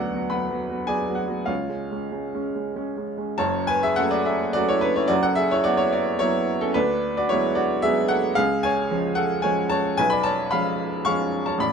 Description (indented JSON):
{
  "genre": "classical, romantic character piece for solo piano",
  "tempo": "93-115 BPM",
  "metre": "3/4",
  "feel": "rubato",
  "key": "unclear",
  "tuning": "A4 = 441 Hz",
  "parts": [
    { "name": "warm baby grand piano", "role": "solo", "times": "0.0-11.7 s", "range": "F#1 to C#6", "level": "-21 LUFS", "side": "equal", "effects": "none" }
  ],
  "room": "light reverb",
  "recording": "close, detailed microphones",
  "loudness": "-21 LUFS",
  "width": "side -6 dB against mid",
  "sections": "0.0-3.4 A section; 3.4-11.7 B section",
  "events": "none",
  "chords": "0.0 Bm; 1.5 C#; 3.4 F#m; 6.8 G#m7b5/D; 8.4 C#; 10.0 C#7/B"
}